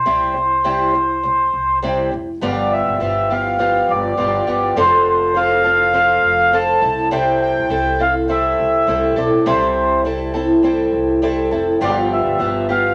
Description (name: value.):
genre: acoustic pop.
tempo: 102 BPM.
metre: 4/4.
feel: swing 55% on 16ths.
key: unclear.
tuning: A4 = 443 Hz.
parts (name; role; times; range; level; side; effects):
mellow accordion; melody; 0.0-12.9 s; C5 to A5; -19 LUFS; equal; none.
upright bass; bass; 0.0-12.9 s; F1 to C2; -30 LUFS; equal; none.
fingerpicked twelve-string acoustic guitar; accompaniment; 0.1-12.9 s; G2 to A4; -20 LUFS; equal; none.
room: wet studio reverb, RT60 0.8 s.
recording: none.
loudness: -17 LUFS.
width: mono.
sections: 0.0-2.4 A section; 2.4-12.9 B section.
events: none.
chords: 0.0 C; 2.4 G7; 4.8 F; 6.8 C6; 11.8 G7.